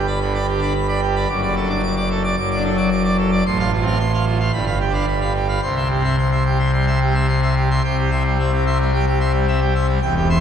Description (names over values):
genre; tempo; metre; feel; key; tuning
classical, organ toccata; 110 BPM; 4/4; straight; C major from 3.5 s; A4 = 442 Hz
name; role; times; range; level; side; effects
pipe organ, full organ; solo; 0.0-10.4 s; E1 to D6; -16 LUFS; equal; none
room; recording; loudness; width
wet church reverb, RT60 2.9 s; recorded in a church or concert hall; -16 LUFS; side -8 dB against mid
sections
0.0-7.8 A section; 7.8-10.4 B section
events
none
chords
0.0 G; 1.3 D/F#; 3.5 F/A; 4.5 G7; 5.6 C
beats
0.22 0.76 | 1.30 1.84 2.38 2.92 | 3.46 4.00 4.53 5.07 | 5.62 6.18 6.73 7.29 | 7.84 8.39 8.93 9.48 | 10.02